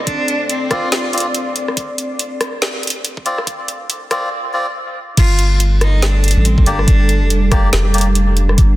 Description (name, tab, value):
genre	deep dubstep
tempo	141 BPM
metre	4/4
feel	swing 59% on 16ths, half-time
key	unclear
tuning	A4 = 440 Hz
part	rich cello	melody	0.0-1.1, 5.2-7.5 s	C4 to F4	-24 LUFS	equal	low-pass filter, dub echo
part	dark analog pad	sustained chords	0.0-8.8 s	G3 to D5	-22 LUFS	right 1 dB	chorus
part	soft dub sub bass	bass	0.0-8.8 s	F1 to C2	-14 LUFS	equal	high-pass filter
part	electronic kick drum	drums	0.1-8.7 s	none	-13 LUFS	equal	none
part	garage drum kit	drums	0.1-8.7 s	crash cymbal, hi-hat, rim click, snare drum	-20 LUFS	equal	none
part	melodica	stabs	0.7-8.1 s	Bb3 to D5	-23 LUFS	left 1 dB	low-pass filter, dub echo
room	light reverb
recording	dense, heavily limited modern master, high-pass filter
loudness	-13 LUFS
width	side -16 dB against mid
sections	0.0-5.2 A section; 5.2-8.8 B section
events	build-up 0.0-5.2; drop 5.2-8.8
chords	0.0 Dm7; 5.2 Gm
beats	| 0.07 0.49 0.92 1.35 | 1.77 2.20 2.62 3.05 | 3.47 3.90 4.33 4.75 | 5.18 5.60 6.03 6.45 | 6.88 7.30 7.73 8.15 | 8.58